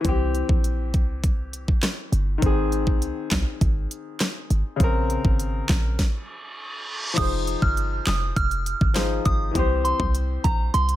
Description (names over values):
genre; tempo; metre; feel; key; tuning
dancehall; 101 BPM; 4/4; straight; F minor; A4 = 436 Hz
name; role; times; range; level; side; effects
clear baby grand piano; accompaniment; 0.0-11.0 s; Db3 to C5; -28 LUFS; left 4 dB; none
short 808-style bass; bass; 0.0-11.0 s; F1 to C2; -24 LUFS; equal; none
pop drum kit; drums; 0.0-11.0 s; crash cymbal, handclaps, hi-hat, kick drum, rim click, snare drum; -23 LUFS; equal; none
reverse cymbal; sound effects; 6.3-7.2 s; none; -30 LUFS; right 2 dB; none
soft synth bell; melody; 7.2-11.0 s; Bb5 to F6; -27 LUFS; right 2 dB; chorus, digital delay
room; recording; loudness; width
digital ambience; none; -21 LUFS; side -14 dB against mid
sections
0.0-7.2 A section; 7.2-11.0 B section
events
stop 6.0-7.2; reverse cymbal 6.3-7.2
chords
0.0 C; 2.4 Ab; 4.8 Bbmadd9; 7.2 Fm7; 9.6 C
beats
| 0.05 0.64 1.24 1.83 | 2.42 3.02 3.61 4.21 | 4.80 5.39 5.99 6.58 | 7.17 7.77 8.36 8.96 | 9.55 10.14 10.74